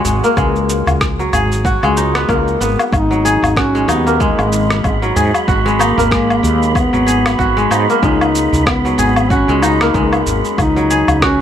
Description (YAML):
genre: organic downtempo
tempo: 94 BPM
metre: 4/4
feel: swing 57% on 16ths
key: unclear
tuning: A4 = 441 Hz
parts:
  - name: kora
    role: arpeggios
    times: 0.0-11.4 s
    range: F#3 to G#4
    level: -16 LUFS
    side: left 1 dB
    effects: tape echo
  - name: udu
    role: percussion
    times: 0.0-11.2 s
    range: none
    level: -23 LUFS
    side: equal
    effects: none
  - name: woody fretless electric bass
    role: bass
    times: 0.1-11.4 s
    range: G#1 to G#2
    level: -18 LUFS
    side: equal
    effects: wide subtle chorus
  - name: electronic cabasa, woodblock and rim click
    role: drums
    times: 0.1-11.4 s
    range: none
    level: -19 LUFS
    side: left 1 dB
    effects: none
  - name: electronic kick drum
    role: drums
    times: 0.4-11.4 s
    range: none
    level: -19 LUFS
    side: equal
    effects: none
  - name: dark duduk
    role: melody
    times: 2.9-11.4 s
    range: G#3 to D#4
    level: -17 LUFS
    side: left 1 dB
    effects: ping-pong delay
  - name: wind-like tuned noise texture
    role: texture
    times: 4.0-11.4 s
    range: B5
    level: -23 LUFS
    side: right 6 dB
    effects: built-in reverb
room: light reverb, small room ambience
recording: none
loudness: -11 LUFS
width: side -9 dB against mid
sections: 0.0-11.4 A section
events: none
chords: 0.0 C#sus2; 2.9 G#m9; 8.0 C#sus2